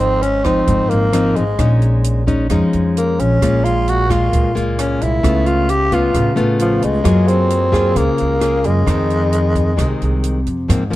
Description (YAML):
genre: bossa nova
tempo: 132 BPM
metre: 4/4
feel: straight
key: Bb minor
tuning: A4 = 438 Hz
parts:
  - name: growling tenor saxophone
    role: melody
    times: 0.0-10.2 s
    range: F3 to G4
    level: -18 LUFS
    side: equal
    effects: none
  - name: nylon-string guitar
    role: accompaniment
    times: 0.0-11.0 s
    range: F2 to Ab4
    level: -17 LUFS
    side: left 2 dB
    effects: none
  - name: upright bass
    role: bass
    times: 0.0-11.0 s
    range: Ab1 to Ab2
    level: -18 LUFS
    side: right 1 dB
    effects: none
  - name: compact cocktail drum kit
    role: drums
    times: 0.2-11.0 s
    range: hi-hat, kick drum, rim click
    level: -23 LUFS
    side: right 1 dB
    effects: none
room: light reverb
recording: dark, warm production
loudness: -13 LUFS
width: side -16 dB against mid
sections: 0.0-10.7 A section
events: none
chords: 0.0 Ab69; 1.6 Bbm7; 5.2 Dbaug7; 7.1 Gbmaj9; 8.9 Fm7